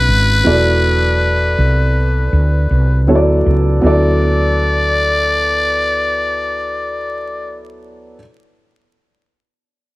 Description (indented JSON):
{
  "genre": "hip hop, jazz-hop",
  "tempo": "80 BPM",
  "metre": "4/4",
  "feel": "swing 61% on 16ths",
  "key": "D major",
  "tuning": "A4 = 438 Hz",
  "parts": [
    { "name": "trumpet with metal mute", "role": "melody", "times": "0.0-7.6 s", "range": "B4 to D5", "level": "-17 LUFS", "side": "left 2 dB", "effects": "none" },
    { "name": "dark upright piano", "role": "accompaniment", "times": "0.0-8.2 s", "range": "C#3 to E5", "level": "-18 LUFS", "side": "equal", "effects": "none" },
    { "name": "woody fretless electric bass", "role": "bass", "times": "0.0-8.2 s", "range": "E1 to D2", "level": "-15 LUFS", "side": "equal", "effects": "analog chorus" }
  ],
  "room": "light reverb, small room ambience",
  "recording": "vinyl crackle",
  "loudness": "-12 LUFS",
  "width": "side -19 dB against mid",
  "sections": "0.0-3.8 A section; 3.8-6.8 B section",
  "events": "none",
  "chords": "0.5 Cmaj9/E; 3.1 D69"
}